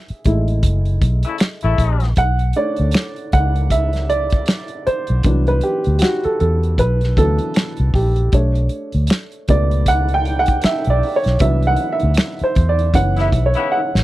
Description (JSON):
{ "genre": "R&B, neo-soul", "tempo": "78 BPM", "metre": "4/4", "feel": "swing 59% on 16ths", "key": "B minor", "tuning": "A4 = 438 Hz", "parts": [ { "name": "dark upright piano", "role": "accompaniment", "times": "0.0-14.0 s", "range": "B2 to G5", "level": "-19 LUFS", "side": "right 2 dB", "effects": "none" }, { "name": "vintage muted fingered electric bass", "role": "bass", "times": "0.1-14.0 s", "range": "F#1 to E2", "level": "-17 LUFS", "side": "equal", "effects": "none" }, { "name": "warm soul drum kit", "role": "drums", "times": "0.1-14.0 s", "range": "finger snaps, hi-hat, kick drum, snare drum", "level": "-17 LUFS", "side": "equal", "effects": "none" }, { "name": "mellow horn section", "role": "stabs", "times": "1.2-2.1, 13.2-13.8 s", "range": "C#3 to E4", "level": "-21 LUFS", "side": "left 7 dB", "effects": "none" } ], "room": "little or no reverb", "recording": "dry, close 1970s-style studio recording", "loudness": "-15 LUFS", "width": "side -16 dB against mid", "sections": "0.0-2.2 A section; 2.2-14.0 B section", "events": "band accent 0.0-2.2, 11.4-14.0; upright piano solo 0.0-2.2, 2.2-14.0; drum fill 13.7-14.0", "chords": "0.0 F#m9; 2.2 Bm9; 5.2 Cmaj9#11; 8.3 Bm9; 11.4 Cmaj9#11; 12.9 F#7sus4", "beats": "0.63 1.40 | 2.17 2.94 3.71 4.48 | 5.25 6.02 6.79 7.56 | 8.32 9.09 9.86 10.63 | 11.40 12.17 12.94 13.71" }